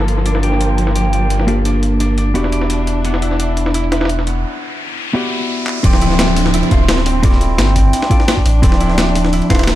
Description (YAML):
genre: liquid drum and bass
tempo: 172 BPM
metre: 4/4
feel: straight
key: D minor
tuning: A4 = 441 Hz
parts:
  - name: hollow-body jazz guitar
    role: accompaniment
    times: 0.0-9.6 s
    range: F3 to F5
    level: -20 LUFS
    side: equal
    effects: low-pass filter, ping-pong delay
  - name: dark studio string section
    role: sustained chords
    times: 0.0-9.8 s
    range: F3 to A4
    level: -24 LUFS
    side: left 1 dB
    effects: sidechain pumping
  - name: warm sub bass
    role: bass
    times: 0.0-9.8 s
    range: D1 to A1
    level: -16 LUFS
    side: equal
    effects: tube saturation
  - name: jungle sampler-style drum kit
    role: drums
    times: 0.0-9.8 s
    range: ride cymbal, snare drum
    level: -23 LUFS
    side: equal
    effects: overdrive, high-pass filter on cymbals, low-pass filter on cymbals, small room ambience, high-pass filter on snare, low-pass filter on snare
  - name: breakbeat sampler-style drum kit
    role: drums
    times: 0.1-9.7 s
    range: crash cymbal, handclaps, hi-hat, snare drum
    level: -22 LUFS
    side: left 1 dB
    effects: small room ambience
  - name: concert harp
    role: arpeggios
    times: 0.3-9.8 s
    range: B3 to D5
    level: -21 LUFS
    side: equal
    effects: ping-pong delay
  - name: riser and downlifter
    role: sound effects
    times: 3.8-8.6 s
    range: none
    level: -24 LUFS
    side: left 2 dB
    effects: none
  - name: electronic kick drum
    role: drums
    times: 5.8-9.6 s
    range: none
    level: -14 LUFS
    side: equal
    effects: small room ambience
room: light reverb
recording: dark, warm production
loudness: -12 LUFS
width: side -14 dB against mid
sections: 0.0-5.8 A section; 5.8-9.8 B section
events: filter sweep on hollow-body jazz guitar 0.0-5.8; riser 3.8-5.8; break 4.4-5.8; drum fill 5.7; drop 5.8-9.8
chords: 0.0 Gm9; 2.4 Em9; 5.8 Dm9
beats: | 0.26 0.61 0.95 1.30 | 1.65 2.00 2.35 2.70 | 3.05 3.40 3.75 4.09 | 4.44 4.79 5.14 5.49 | 5.84 6.19 6.54 6.89 | 7.24 7.58 7.93 8.28 | 8.63 8.98 9.33 9.68